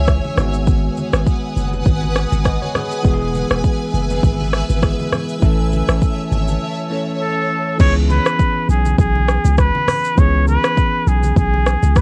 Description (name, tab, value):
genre	afrobeats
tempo	101 BPM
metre	4/4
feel	swing 55% on 16ths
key	unclear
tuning	A4 = 440 Hz
part	bell-like tine electric piano	accompaniment	0.0-12.0 s	D#3 to D#5	-26 LUFS	equal	cassette tape
part	granular cloud pad	sustained chords	0.0-7.8 s	B4 to E6	-28 LUFS	equal	built-in reverb, cassette tape
part	punchy sub bass	bass	0.0-12.0 s	E1 to C#2	-19 LUFS	equal	none
part	afro-pop drum kit	drums	0.1-12.0 s	crash cymbal, hi-hat, kick drum, rim click, shaker	-19 LUFS	equal	vintage 12-bit sampler grit, cassette tape
part	congas	percussion	0.2-12.0 s	none	-30 LUFS	equal	none
part	breathy trumpet	melody	7.2-12.0 s	G#4 to C#5	-22 LUFS	equal	cassette tape
room	little or no reverb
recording	home recording on cassette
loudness	-17 LUFS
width	mono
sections	0.0-7.8 A section; 7.8-12.0 B section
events	break 6.6-7.8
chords	0.4 G#m7; 3.0 E; 5.4 A; 7.8 C#m7